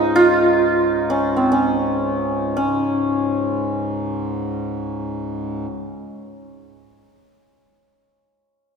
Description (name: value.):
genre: indian classical, Hindustani.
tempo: free time.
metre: none.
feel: none.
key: unclear.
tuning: A4 = 438 Hz.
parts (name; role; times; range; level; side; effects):
santur; melody; 0.0-6.4 s; C4 to F4; -18 LUFS; right 1 dB; none.
hand-pumped harmonium; drone; 0.0-5.7 s; Db2 to Ab2; -26 LUFS; equal; none.
room: wet church reverb, RT60 2.8 s.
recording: recorded in a church or concert hall.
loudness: -18 LUFS.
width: side -6 dB against mid.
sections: 0.0-2.6 A section; 2.6-4.8 B section.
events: none.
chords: none.